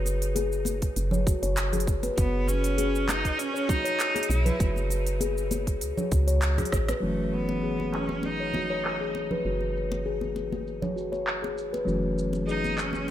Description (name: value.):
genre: organic downtempo.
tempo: 99 BPM.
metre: 4/4.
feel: swing 53% on 16ths.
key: F# dorian.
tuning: A4 = 440 Hz.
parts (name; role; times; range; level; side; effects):
woody FM bass; bass; 0.0-13.1 s; F#1 to C#2; -29 LUFS; equal; tube saturation, sidechain pumping.
organic electronic drum kit; drums; 0.1-13.1 s; handclaps, hi-hat, rim click, shaker; -33 LUFS; right 1 dB; low-pass filter on hats, low-pass filter on perc, low-pass filter on snare, low-pass filter on room.
congas; percussion; 0.1-13.1 s; none; -35 LUFS; right 1 dB; none.
steel tongue drum; arpeggios; 0.4-13.1 s; F#4 to C#5; -30 LUFS; left 2 dB; low-pass filter, tape echo.
electronic kick drum; drums; 0.8-6.9 s; none; -28 LUFS; equal; none.
bright cello; melody; 2.2-13.1 s; A3 to E4; -32 LUFS; right 2 dB; tape echo.
tine electric piano; accompaniment; 7.0-13.1 s; E3 to C#4; -33 LUFS; left 2 dB; sidechain pumping, tape echo.
room: little or no reverb.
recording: none.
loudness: -25 LUFS.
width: side -12 dB against mid.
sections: 0.0-7.0 A section; 7.0-13.1 B section.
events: drum fill 6.6-7.0; band accent 6.9-7.2; filter sweep on drum 7.0-13.1.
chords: 0.0 F#5; 7.0 F#m7.